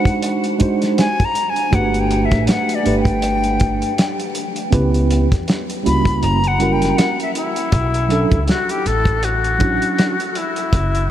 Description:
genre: hip hop, jazz-hop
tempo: 80 BPM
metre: 4/4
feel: swing 58% on 16ths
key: B minor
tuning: A4 = 441 Hz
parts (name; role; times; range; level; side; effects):
- silver concert flute; melody; 0.0-11.1 s; E4 to B5; -20 LUFS; left 3 dB; none
- mellow tine electric piano; accompaniment; 0.0-10.2 s; F#3 to C5; -20 LUFS; right 2 dB; fast stereo tremolo
- cloth-damped thuddy drum kit; drums; 0.1-11.1 s; hi-hat, kick drum, snare drum; -20 LUFS; equal; none
- upright bass; bass; 1.7-11.1 s; F#1 to E2; -20 LUFS; equal; none
room: moderate huge ambient reverb, RT60 7.2 s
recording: dreamy mix soaked in reverb, vinyl crackle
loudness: -15 LUFS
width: side -11 dB against mid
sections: 0.0-7.7 A section; 7.7-11.1 B section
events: break 0.0-1.7; flute solo 0.0-7.7; kick muted 6.2-7.7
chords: 0.2 G#7#11; 1.7 Gmaj7; 4.7 C#m7b5; 6.2 F#7b9; 7.7 Bm11

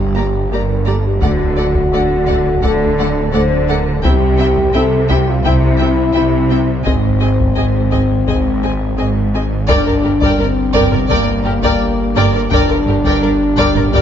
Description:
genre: cinematic, hybrid orchestral and electronic film score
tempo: 85 BPM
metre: 4/4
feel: straight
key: G minor from 9.7 s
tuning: A4 = 438 Hz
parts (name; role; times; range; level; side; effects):
- dark French horn section; sustained chords; 0.0-14.0 s; Bb3 to C5; -17 LUFS; left 3 dB; none
- dark symphonic double bass section; bass; 0.0-14.0 s; G1 to D2; -20 LUFS; right 4 dB; none
- rich symphonic cello section; bass; 0.0-14.0 s; G2 to D3; -20 LUFS; right 2 dB; none
- snarling distorted saw bass; bass; 0.0-14.0 s; D1 to C2; -21 LUFS; left 1 dB; none
- warm symphonic violin section; second line; 0.2-14.0 s; G4 to Bb5; -22 LUFS; left 2 dB; none
- dark studio viola section; accompaniment; 0.2-14.0 s; A3 to Bb4; -22 LUFS; right 1 dB; none
- taiko ensemble; drums; 1.2-14.0 s; none; -20 LUFS; left 1 dB; none
- warm symphonic violin section; melody; 9.7-14.0 s; Bb4 to G5; -25 LUFS; left 3 dB; none
- mellow trombone section; sustained chords; 9.7-14.0 s; D3 to G3; -25 LUFS; right 5 dB; none
room: moderate scoring stage reverb, RT60 1.9 s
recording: dark, warm production, nothing above 7.7 kHz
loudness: -12 LUFS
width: side -9 dB against mid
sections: 0.0-9.7 A section; 9.7-14.0 B section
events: none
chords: 0.0 Gm; 1.2 D; 4.0 C; 6.9 Ab; 9.7 Gm

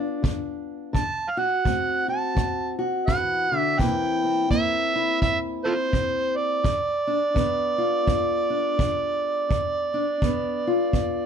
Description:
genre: acoustic country blues, solo or duo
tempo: 84 BPM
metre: 4/4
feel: swing 61% on 8ths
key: unclear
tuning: A4 = 440 Hz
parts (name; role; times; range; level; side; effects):
- fingerpicked steel-string acoustic guitar; accompaniment; 0.0-11.3 s; G2 to F#4; -26 LUFS; left 2 dB; none
- kick drum; drums; 0.2-11.1 s; none; -25 LUFS; equal; none
- overdriven harmonica; melody; 1.0-11.3 s; F4 to A5; -24 LUFS; right 3 dB; none
room: light reverb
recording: none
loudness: -21 LUFS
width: side -7 dB against mid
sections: 0.0-11.3 A section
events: none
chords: 0.0 G7; 0.9 D7; 3.8 C7; 6.6 G7

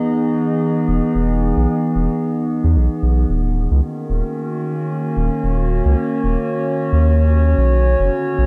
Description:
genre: IDM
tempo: 112 BPM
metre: 4/4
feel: swing 56% on 16ths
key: Eb phrygian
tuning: A4 = 435 Hz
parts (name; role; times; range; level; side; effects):
- warbly tape-like pad; sustained chords; 0.0-8.5 s; D3 to Eb5; -21 LUFS; equal; chorus, built-in reverb, vintage 12-bit sampler grit
- round analog bass; bass; 0.9-8.5 s; Eb1 to E2; -18 LUFS; equal; tube saturation
room: moderate lush hall reverb, RT60 3.1 s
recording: none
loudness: -18 LUFS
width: mono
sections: 0.0-3.3 A section; 3.3-8.5 B section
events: none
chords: 0.0 Emaj7; 3.3 Ebm7; 7.6 Bmadd9

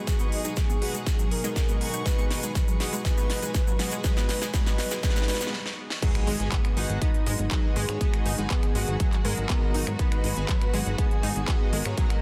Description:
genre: progressive house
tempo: 121 BPM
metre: 4/4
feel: straight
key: G# minor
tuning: A4 = 439 Hz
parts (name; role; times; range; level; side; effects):
- warm velvety synth lead; melody; 0.0-12.2 s; D#4 to B4; -38 LUFS; equal; chorus, sidechain pumping, delay
- warm studio string section; sustained chords; 0.0-12.2 s; B2 to G#4; -40 LUFS; equal; sidechain pumping
- chorused polysynth; stabs; 0.0-12.2 s; G#3 to G#5; -37 LUFS; equal; sidechain pumping, delay
- riser and impact; sound effects; 2.5-8.0 s; none; -44 LUFS; equal; none
- backwards swelling texture; texture; 0.0-5.5 s; C#6; -47 LUFS; equal; built-in reverb, sidechain pumping
- big-room dance drum kit; drums; 0.1-12.2 s; crash cymbal, finger snaps, handclaps, hi-hat, snare drum; -36 LUFS; equal; high-pass filter on snare, small room reverb, sidechain pumping on hats, high-pass filter on hats, sidechain pumping on cymbals, high-pass filter on cymbals
- electronic kick drum; drums; 0.1-12.1 s; none; -27 LUFS; equal; small room reverb
- egg shaker; percussion; 0.1-5.5 s; none; -40 LUFS; equal; none
- analog pluck; arpeggios; 0.2-12.0 s; F#3 to D#4; -39 LUFS; equal; chorus, sidechain pumping, delay
- airy dreamy lead; second line; 6.0-12.2 s; D#4 to B4; -43 LUFS; equal; none
- plucky analog bass; bass; 6.3-11.9 s; G#1 to G#2; -31 LUFS; equal; sidechain pumping
room: digital ambience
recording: dense, heavily limited modern master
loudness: -26 LUFS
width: mono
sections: 0.0-6.0 A section; 6.0-12.2 B section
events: build-up 0.0-6.0; drum fill 0.0-5.5, 5.5-6.0; filter sweep on synth pluck 0.0-6.0; stop 5.5-6.0; drop 6.0-12.2; impact 6.0-8.0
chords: 0.0 G#m7

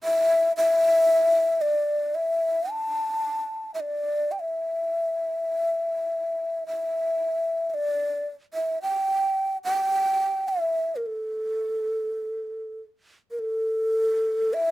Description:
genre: japanese traditional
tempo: 50-59 BPM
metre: 2/4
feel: rubato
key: unclear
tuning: A4 = 440 Hz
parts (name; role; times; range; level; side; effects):
- breathy mellow long shakuhachi; solo; 0.0-14.7 s; A4 to A5; -23 LUFS; equal; none
room: light reverb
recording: close, detailed microphones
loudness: -23 LUFS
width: side -16 dB against mid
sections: 0.0-4.4 A section; 4.4-13.4 B section; 13.4-14.7 C section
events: none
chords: none

